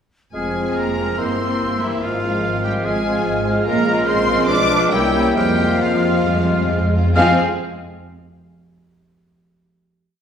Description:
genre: classical, dramatic, fast romantic movement for symphony orchestra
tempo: 132-148 BPM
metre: 4/4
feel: rubato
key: F minor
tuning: A4 = 440 Hz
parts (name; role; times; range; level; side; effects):
- warm studio violin section; melody; 0.3-7.4 s; E5 to D6; -24 LUFS; left 3 dB; none
- bright clarinet; second line; 0.3-7.3 s; Bb4 to Db5; -29 LUFS; equal; none
- bright oboe; second line; 0.3-7.3 s; E4 to F5; -26 LUFS; right 1 dB; none
- concert flute; second line; 0.3-7.4 s; E6 to F6; -26 LUFS; right 1 dB; none
- dark bassoon; accompaniment; 0.3-7.3 s; Ab3 to Bb3; -26 LUFS; equal; none
- dark French horn section; sustained chords; 0.3-7.3 s; Ab3 to F4; -24 LUFS; left 2 dB; none
- rich studio cello section; bass; 0.3-7.4 s; E3 to D4; -26 LUFS; right 2 dB; none
- rich symphonic double bass section; bass; 0.3-7.4 s; F1 to F2; -25 LUFS; right 2 dB; none
- warm symphonic violin section; second line; 0.6-7.4 s; C4 to Ab4; -27 LUFS; left 2 dB; none
- rich symphonic viola section; accompaniment; 0.6-7.4 s; C3 to C4; -25 LUFS; right 2 dB; none
- timpani; percussion; 5.4-7.4 s; F2; -23 LUFS; equal; none
room: wet recital hall reverb, RT60 1.4 s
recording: heard from further back in the room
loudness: -15 LUFS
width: side -8 dB against mid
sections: 0.3-7.2 A section; 7.2-8.9 final chord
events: timpani fill 5.4-7.2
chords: 0.3 Fm; 1.2 C7/G; 2.0 Fm/Ab; 3.7 Bbm7; 4.5 Bdim7; 4.9 C7b9; 5.4 Fm

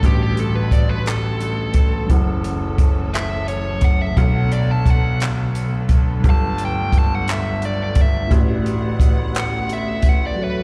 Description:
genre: slow six-eight R&B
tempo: 58 BPM (dotted quarters)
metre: 6/8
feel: straight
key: unclear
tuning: A4 = 441 Hz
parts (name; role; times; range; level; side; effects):
- dark smooth lead guitar; melody; 0.0-10.6 s; G4 to A5; -29 LUFS; equal; overdrive
- mellow tine electric piano; accompaniment; 0.0-10.6 s; A2 to F#5; -27 LUFS; equal; none
- rich studio string section; sustained chords; 0.0-10.6 s; D3 to F#5; -33 LUFS; equal; none
- clear grand piano; bass; 0.0-10.3 s; F#1 to B1; -25 LUFS; equal; none
- compact cocktail drum kit; drums; 0.0-10.2 s; handclaps, hi-hat, kick drum; -19 LUFS; equal; none
room: small room ambience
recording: live gig heard through the venue's PA, recital hall reverb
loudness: -19 LUFS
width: mono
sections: 0.0-10.6 A section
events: lead electric guitar solo 0.0-10.6; break 10.4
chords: 0.0 A13sus4; 2.1 F#m7; 4.2 Bm7; 6.2 Gmaj9; 8.3 A13sus4

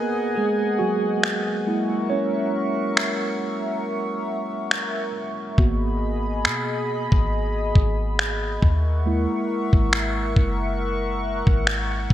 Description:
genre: contemporary R&B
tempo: 69 BPM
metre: 4/4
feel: swing 54% on 16ths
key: unclear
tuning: A4 = 442 Hz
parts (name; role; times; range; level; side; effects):
- mellow tine electric piano; accompaniment; 0.0-12.1 s; F#3 to C#5; -26 LUFS; right 2 dB; fast stereo tremolo
- chorused pulse-width pad; sustained chords; 0.0-12.1 s; G#4 to C#6; -27 LUFS; left 1 dB; none
- dusty soul sampler-style drum kit; drums; 1.2-12.1 s; finger snaps, kick drum; -21 LUFS; equal; gated reverb
- clean 808-style bass; bass; 5.6-12.1 s; F#1 to B2; -25 LUFS; equal; none
room: moderate plate reverb, RT60 3.6 s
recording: bright 1980s-style digital production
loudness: -20 LUFS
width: side -12 dB against mid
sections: 0.0-12.1 A section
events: break 0.0-5.6; tine electric piano solo 0.0-12.1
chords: 0.0 G#m7; 1.7 F#7; 5.6 G#m7; 8.6 F#7

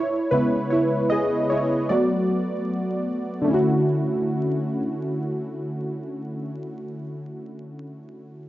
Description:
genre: hip hop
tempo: 76 BPM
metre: 4/4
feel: swing 57% on 16ths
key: D major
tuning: A4 = 440 Hz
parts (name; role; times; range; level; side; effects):
- warm analog keys; accompaniment; 0.0-8.5 s; C#3 to D#5; -22 LUFS; equal; chorus, cassette tape
room: moderate spring reverb, RT60 2.2 s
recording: dark, warm production, vinyl crackle, nothing above 7.6 kHz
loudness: -21 LUFS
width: side -14 dB against mid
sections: 0.0-3.5 A section; 3.5-6.6 B section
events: synth keys solo 0.0-3.5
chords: 0.0 C#m9; 1.9 Bm7/F#; 3.5 Dmaj9

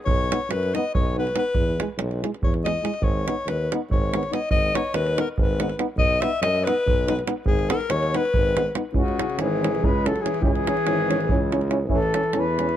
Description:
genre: balkan folk, Balkan brass band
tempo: 284 BPM (eighths)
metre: 7/8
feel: straight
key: G# minor, C# minor from 8.9 s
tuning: A4 = 439 Hz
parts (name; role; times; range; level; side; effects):
- warm alto saxophone; second line; 0.1-12.8 s; C#3 to E5; -26 LUFS; left 3 dB; none
- warm tuba; bass; 0.1-12.8 s; G#1 to F#2; -26 LUFS; equal; none
- davul; percussion; 0.1-12.7 s; none; -25 LUFS; right 2 dB; none
- mellow euphonium; accompaniment; 0.3-12.7 s; D#4 to E4; -32 LUFS; left 9 dB; none
- warm euphonium; accompaniment; 0.3-12.7 s; G#3 to C#4; -30 LUFS; right 6 dB; none
- mellow flugelhorn; melody; 9.0-12.8 s; F#4 to B4; -25 LUFS; left 1 dB; none
room: moderate spring reverb, RT60 2.3 s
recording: close, detailed microphones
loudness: -20 LUFS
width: side -11 dB against mid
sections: 0.0-8.9 A section; 8.9-12.8 B section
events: alto saxophone solo 0.0-8.9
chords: 0.1 B; 1.5 E; 3.0 G#m; 6.0 B; 7.5 G#m; 8.9 C#m; 11.9 A

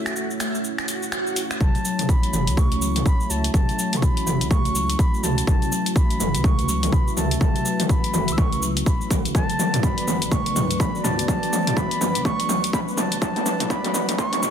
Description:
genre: afro house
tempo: 124 BPM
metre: 4/4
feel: swing 59% on 16ths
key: F# minor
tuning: A4 = 441 Hz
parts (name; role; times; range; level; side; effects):
- dark analog pad; sustained chords; 0.0-14.5 s; F#3 to D5; -32 LUFS; right 2 dB; chorus, sidechain pumping
- mellow synth brass; stabs; 0.0-14.1 s; A3 to G#5; -33 LUFS; left 1 dB; chorus, sidechain pumping, ping-pong delay
- house drum kit; drums; 0.1-14.5 s; finger snaps, hi-hat, shaker, toms; -24 LUFS; equal; soft clipping on snare
- swell; sound effects; 0.8-1.6 s; none; -30 LUFS; right 2 dB; none
- concert flute; melody; 1.6-14.5 s; A5 to E6; -27 LUFS; right 1 dB; ping-pong delay
- buzzing kalimba; arpeggios; 1.6-14.5 s; E3 to F#4; -29 LUFS; left 4 dB; sidechain pumping, low-pass filter, ping-pong delay
- dark detuned saw bass; bass; 1.6-14.5 s; F#1 to C#2; -29 LUFS; equal; tube saturation, sidechain pumping
- electronic kick drum; drums; 1.6-14.3 s; none; -20 LUFS; equal; none
room: light reverb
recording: dense, heavily limited modern master, high-pass filter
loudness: -19 LUFS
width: side -8 dB against mid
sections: 0.0-1.6 A section; 1.6-14.5 B section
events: swell 0.8-1.6; build-up 1.6-14.5; drum fill 1.6-14.5; filter sweep on kalimba 1.6-14.5; filter sweep on analog polysynth 1.6-14.5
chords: 0.0 F#m7; 9.3 Bm/F#

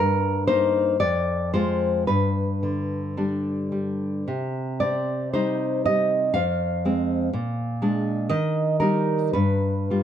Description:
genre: romantic piece for solo classical guitar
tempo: 51-62 BPM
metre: 2/4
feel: rubato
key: C minor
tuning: A4 = 441 Hz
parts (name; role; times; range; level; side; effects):
- nylon-string guitar; solo; 0.0-10.0 s; F2 to F5; -21 LUFS; equal; none
room: light reverb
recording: close, detailed microphones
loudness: -21 LUFS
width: side -9 dB against mid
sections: 0.0-10.0 A section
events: none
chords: 0.0 Eb/G; 1.0 Fm; 2.1 G; 4.3 Cm; 6.3 Fm; 7.3 Bb7; 8.3 Eb; 9.4 G7

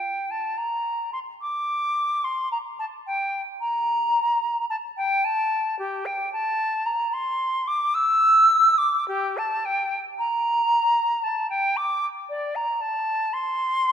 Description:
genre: classical, baroque-style fantasia for unaccompanied flute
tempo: 55 BPM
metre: 3/4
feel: uneven beats, rubato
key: unclear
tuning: A4 = 439 Hz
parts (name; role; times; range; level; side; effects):
- silver concert flute; solo; 0.0-13.9 s; G4 to E6; -21 LUFS; equal; none
room: moderate church reverb, RT60 2.4 s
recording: none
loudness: -21 LUFS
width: side -8 dB against mid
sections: 0.0-13.9 A section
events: none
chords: none

